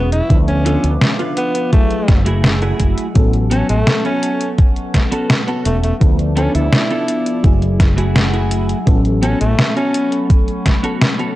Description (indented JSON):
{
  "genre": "vaporwave",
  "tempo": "84 BPM",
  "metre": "4/4",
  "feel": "straight",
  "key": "A major",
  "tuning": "A4 = 440 Hz",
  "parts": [
    { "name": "raspy alto saxophone", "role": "melody", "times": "0.0-10.2 s", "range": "A3 to E4", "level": "-22 LUFS", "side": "equal", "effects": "vintage 12-bit sampler grit, tape echo" },
    { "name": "FM electric piano with soft pad layer", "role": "accompaniment", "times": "0.0-11.4 s", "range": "D3 to A4", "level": "-23 LUFS", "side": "left 2 dB", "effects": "wide subtle chorus, tape echo" },
    { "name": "warbly tape-like pad", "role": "sustained chords", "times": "0.0-11.4 s", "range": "A3 to E6", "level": "-30 LUFS", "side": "equal", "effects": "chorus, built-in reverb" },
    { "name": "clean electric guitar", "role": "riff", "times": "0.0-11.4 s", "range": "A3 to B4", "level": "-22 LUFS", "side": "right 1 dB", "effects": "ensemble chorus, tape echo" },
    { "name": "fretless electric bass", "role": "bass", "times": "0.0-9.5 s", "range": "E1 to D2", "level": "-17 LUFS", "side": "equal", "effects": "ensemble chorus" },
    { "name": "detuned 8-bit digital drum machine", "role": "drums", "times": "0.1-11.3 s", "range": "hi-hat, snare drum", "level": "-17 LUFS", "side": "equal", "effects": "overdrive, vintage 12-bit sampler grit" },
    { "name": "electronic kick drum", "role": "drums", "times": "0.3-10.8 s", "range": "none", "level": "-13 LUFS", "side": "equal", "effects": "overdrive, vintage 12-bit sampler grit" }
  ],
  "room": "light reverb, digital ambience",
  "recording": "dry, gritty hardware recording, cassette tape",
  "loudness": "-13 LUFS",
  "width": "side -16 dB against mid",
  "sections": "0.0-11.4 A section",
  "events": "none",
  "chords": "0.3 Dm6; 1.7 F#m9; 3.2 A69; 6.0 Dm6; 7.4 F#m9; 8.9 A69"
}